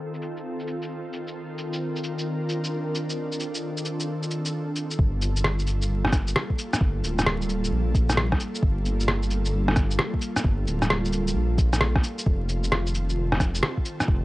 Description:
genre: future garage.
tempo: 132 BPM.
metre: 4/4.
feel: swing 65% on 16ths.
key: G minor.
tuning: A4 = 438 Hz.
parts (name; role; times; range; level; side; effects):
ethereal airy pad; sustained chords; 0.0-14.2 s; Eb3 to Bb4; -30 LUFS; equal; ensemble chorus, built-in reverb, sidechain pumping.
electronic shaker, cabasa and rim click; drums; 0.1-14.1 s; none; -26 LUFS; equal; studio reverb.
dark detuned saw bass; bass; 5.0-14.2 s; D1 to Bb1; -25 LUFS; equal; tube saturation.
electronic kick drum; drums; 5.0-14.2 s; none; -23 LUFS; equal; studio reverb.
room: little or no reverb.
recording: dry, gritty hardware recording, vinyl crackle, low-pass filter, nothing above 10.9 kHz.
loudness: -23 LUFS.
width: side -18 dB against mid.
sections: 0.0-5.0 A section; 5.0-14.2 B section.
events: filter sweep 0.0-5.0.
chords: 0.0 F7; 1.4 Cm11/Eb; 5.0 Gm9; 12.3 F7.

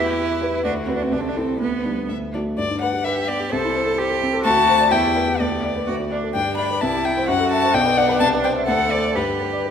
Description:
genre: quick classical-period movement for piano trio.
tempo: 128 BPM.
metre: 2/4.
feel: straight.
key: G major.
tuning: A4 = 442 Hz.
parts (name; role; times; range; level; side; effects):
dark violin; melody; 0.0-9.6 s; F#4 to B5; -22 LUFS; left 5 dB; none.
rich cello; second line; 0.0-9.7 s; B3 to A4; -24 LUFS; right 5 dB; none.
warm concert grand piano; accompaniment; 0.0-9.7 s; B1 to E5; -22 LUFS; left 1 dB; none.
room: wet concert hall reverb, RT60 2.1 s.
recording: none.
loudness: -18 LUFS.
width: side -8 dB against mid.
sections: 0.0-2.6 A section; 2.6-9.7 B section.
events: none.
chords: 0.0 Em; 0.6 Bm/D; 1.1 Am/C; 1.6 G/D; 2.1 D; 2.6 G; 3.5 Am/C; 4.4 D7; 4.9 Em; 5.4 G/D; 5.9 D; 6.3 G; 6.8 C; 7.3 F#m7b5; 7.7 Bm; 8.2 Cmaj7; 8.7 D7; 9.2 G.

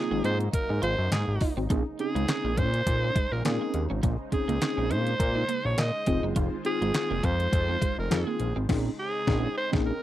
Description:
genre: early-eighties boogie funk.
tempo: 103 BPM.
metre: 4/4.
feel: swing 56% on 16ths.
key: Bb minor.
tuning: A4 = 440 Hz.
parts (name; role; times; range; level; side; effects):
raspy alto saxophone; melody; 0.0-10.0 s; Ab4 to Eb5; -30 LUFS; right 1 dB; slapback echo.
mellow tine electric piano; accompaniment; 0.0-9.9 s; Bb3 to Bb4; -31 LUFS; left 1 dB; medium stereo tremolo.
lush unison pad; sustained chords; 0.0-10.0 s; C3 to C5; -39 LUFS; right 1 dB; chorus, phaser.
clean electric guitar; riff; 0.1-8.6 s; Ab3 to F4; -34 LUFS; right 3 dB; ensemble chorus.
fat analog bass; bass; 0.1-9.9 s; F1 to Bb2; -28 LUFS; equal; none.
detuned 8-bit digital drum machine; drums; 0.2-9.9 s; crash cymbal, handclaps, hi-hat, kick drum, snare drum; -28 LUFS; equal; overdrive.
room: little or no reverb.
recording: dry, close 1970s-style studio recording.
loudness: -24 LUFS.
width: side -13 dB against mid.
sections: 0.0-10.0 A section.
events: band accent 8.7-10.0.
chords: 0.0 Ab7; 1.7 Bbm11; 6.1 Fm7; 8.7 Bbm11.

